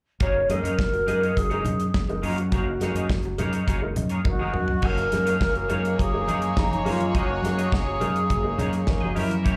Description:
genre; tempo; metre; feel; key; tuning
disco; 104 BPM; 4/4; straight; F# major; A4 = 440 Hz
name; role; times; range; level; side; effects
wooden-headed alto flute; melody; 0.2-9.2 s; D#4 to C#5; -29 LUFS; equal; plate reverb, slapback echo
clean electric guitar; accompaniment; 0.2-9.6 s; A#3 to D#5; -36 LUFS; equal; analog chorus, plate reverb, slapback echo
warm baby grand piano; accompaniment; 0.2-9.3 s; F#3 to E4; -36 LUFS; equal; plate reverb, slapback echo
fingered electric bass; bass; 0.2-9.6 s; F#1 to F#2; -29 LUFS; equal; none
damped 70s drum kit; drums; 0.2-9.6 s; crash cymbal, hi-hat, kick drum, snare drum, toms; -29 LUFS; equal; none
congas; percussion; 0.2-9.6 s; none; -36 LUFS; equal; none
warm studio violin section; second line; 4.8-9.6 s; A#3 to E5; -34 LUFS; equal; plate reverb, slapback echo
room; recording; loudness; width
light reverb; live gig heard through the venue's PA, club reverb; -24 LUFS; mono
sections
0.2-4.8 A section; 4.8-9.6 B section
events
drum fill 4.3-4.8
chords
0.2 F#69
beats
| 0.20 0.78 1.36 1.94 | 2.52 3.10 3.67 4.25 | 4.83 5.41 5.99 6.57 | 7.14 7.72 8.30 8.88 | 9.46

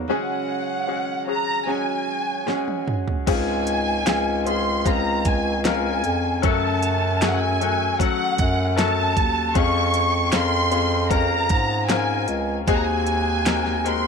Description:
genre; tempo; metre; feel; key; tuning
pop ballad; 76 BPM; 4/4; straight; Db major from 3.3 s; A4 = 440 Hz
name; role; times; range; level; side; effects
bright concert grand piano; accompaniment; 0.0-14.1 s; Ab2 to A#4; -25 LUFS; left 14 dB; none
flamenco guitar; arpeggios; 0.0-3.8 s; F#3 to G#4; -29 LUFS; right 14 dB; none
dark bass clarinet; bass; 0.0-14.1 s; Db2 to Ab2; -24 LUFS; right 1 dB; none
warm studio violin section; melody; 0.1-14.1 s; F#5 to Db6; -24 LUFS; right 2 dB; slapback echo
pop drum kit; drums; 2.5-14.0 s; crash cymbal, hi-hat, kick drum, snare drum, toms; -23 LUFS; right 2 dB; none
room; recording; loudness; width
light reverb, small room ambience; 1960s-style stereo with parts hard left and right; -19 LUFS; side -6 dB against mid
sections
0.0-3.3 A section; 3.3-14.1 A section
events
drum fill 2.5-3.3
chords
0.1 F#sus2; 3.3 Dbmaj7; 6.4 Gbm; 9.6 Dbmaj7/F; 12.7 Ab7/Eb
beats
| 0.09 0.88 1.67 2.47 | 3.27 4.07 4.86 5.65 | 6.43 7.22 8.00 8.78 | 9.55 10.33 11.11 11.89 | 12.68 13.46

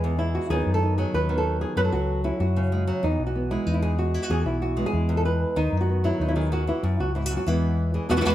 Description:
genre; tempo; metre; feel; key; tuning
flamenco; 190 BPM; 4/4; straight; E major; A4 = 440 Hz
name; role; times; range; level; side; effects
flamenco guitar; melody; 0.0-8.3 s; E2 to B4; -25 LUFS; right 1 dB; none
hollow-body short-scale fingered electric bass; bass; 0.0-8.3 s; B1 to F#2; -25 LUFS; left 1 dB; none
room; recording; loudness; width
moderate stone room reverb, RT60 1.3 s; none; -22 LUFS; side -13 dB against mid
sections
0.0-8.1 A section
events
none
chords
0.0 E; 0.5 B/D#; 1.8 F#m; 3.0 E; 5.6 B/D#; 6.8 F#5; 7.5 E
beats
0.19 | 0.50 0.82 1.14 1.45 | 1.77 2.08 2.40 2.71 | 3.03 3.35 3.67 3.98 | 4.30 4.62 4.93 5.25 | 5.57 5.88 6.20 6.52 | 6.83 7.15 7.47 7.79 | 8.10

